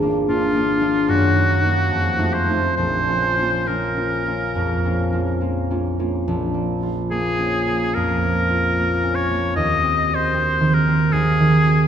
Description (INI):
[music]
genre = classical, romantic duo for oboe and harp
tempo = 66-78 BPM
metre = 4/4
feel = rubato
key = Bb minor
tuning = A4 = 440 Hz
[part]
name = concert harp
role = accompaniment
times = 0.0-11.9 s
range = Ab1 to Gb4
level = -19 LUFS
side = right 1 dB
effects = none
[part]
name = clear oboe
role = melody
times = 0.3-11.9 s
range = F4 to Eb5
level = -21 LUFS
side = left 1 dB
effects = none
[sound]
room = wet scoring stage reverb, RT60 1.7 s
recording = none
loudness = -17 LUFS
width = side -8 dB against mid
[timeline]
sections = 0.0-6.3 A section; 6.3-11.9 A section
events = none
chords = 0.0 Bb7/Ab; 1.1 Ebm/Gb; 1.9 F7b9; 2.8 Bbm; 9.6 Cdim/Eb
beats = 0.28 1.08 1.90 | 2.77 3.68 4.55 5.41 | 6.28 7.12 7.95 8.77 | 9.57 10.35 11.13